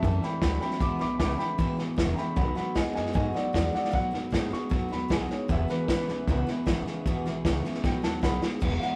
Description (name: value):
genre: rockabilly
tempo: 154 BPM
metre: 4/4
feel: straight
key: E major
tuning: A4 = 440 Hz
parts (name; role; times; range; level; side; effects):
- dark upright piano; melody; 0.0-9.0 s; A#4 to D6; -35 LUFS; equal; none
- picked steel-string acoustic guitar; accompaniment; 0.0-9.0 s; E2 to G#4; -37 LUFS; equal; none
- electric guitar through a small old amp; riff; 0.0-9.0 s; E2 to G#3; -36 LUFS; equal; none
- upright bass; bass; 0.0-8.9 s; E1 to A2; -35 LUFS; equal; none
- vintage drum kit; drums; 0.0-8.9 s; crash cymbal, hi-hat, kick drum, snare drum; -32 LUFS; equal; none
room: moderate studio reverb, RT60 0.6 s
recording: rough rehearsal-room recording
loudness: -28 LUFS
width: mono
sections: 0.0-8.6 A section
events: drum fill 7.8-8.6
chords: 0.0 Am7; 0.8 E; 2.4 B; 5.5 E; 7.8 B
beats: 0.03 0.42 | 0.81 1.20 1.59 1.98 | 2.37 2.77 3.15 3.54 | 3.94 4.33 4.72 5.11 | 5.50 5.89 6.28 6.67 | 7.06 7.45 7.84 8.23 | 8.63